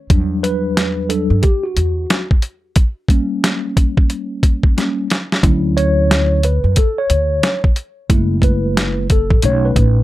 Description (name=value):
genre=hip hop, jazz-hop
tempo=90 BPM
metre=4/4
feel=swing 63% on 16ths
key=unclear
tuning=A4 = 440 Hz
part: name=mellow tine electric piano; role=accompaniment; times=0.1-10.0 s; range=F#3 to C#5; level=-19 LUFS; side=equal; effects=medium stereo tremolo
part: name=upright bass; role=bass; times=0.1-10.0 s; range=F#1 to G2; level=-17 LUFS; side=equal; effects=none
part: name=boom bap sampler-style drum kit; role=drums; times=0.1-10.0 s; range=hi-hat, kick drum, snare drum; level=-14 LUFS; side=equal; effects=none
room=light reverb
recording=dark, warm production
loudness=-13 LUFS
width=side -16 dB against mid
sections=0.0-10.0 A section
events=tine electric piano solo 0.0-10.0; drum fill 4.8-5.4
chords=0.1 Em7; 2.8 Gdim; 5.4 Dmaj7; 8.1 F#m7; 9.4 B7